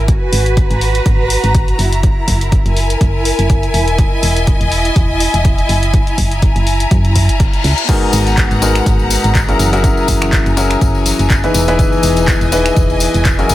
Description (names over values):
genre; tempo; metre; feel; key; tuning
piano house; 123 BPM; 4/4; swing 56% on 16ths; F# mixolydian; A4 = 442 Hz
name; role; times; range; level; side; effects
solid FM bass; bass; 0.0-13.5 s; E1 to F#2; -16 LUFS; equal; sidechain pumping
rich symphonic string section; texture; 0.0-13.5 s; E3 to A#5; -18 LUFS; equal; sidechain pumping
electronic kick drum; drums; 0.1-13.4 s; none; -14 LUFS; equal; none
punchy analog drum machine; drums; 0.1-13.5 s; crash cymbal, finger snaps, handclaps, hi-hat; -20 LUFS; left 1 dB; none
reverse cymbal; sound effects; 7.2-7.9 s; none; -22 LUFS; left 6 dB; none
bright baby grand piano; riff; 7.9-13.5 s; G#2 to B4; -15 LUFS; left 2 dB; sidechain pumping, digital delay
tambourine; percussion; 7.9-13.5 s; none; -25 LUFS; left 7 dB; none
room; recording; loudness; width
light reverb; none; -11 LUFS; side -15 dB against mid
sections
0.0-13.5 A section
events
reverse cymbal 7.2-7.9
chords
0.1 G#m9; 1.8 F#9; 3.7 Emaj7; 5.7 F#9; 7.9 G#m9; 9.6 F#9; 11.5 Emaj7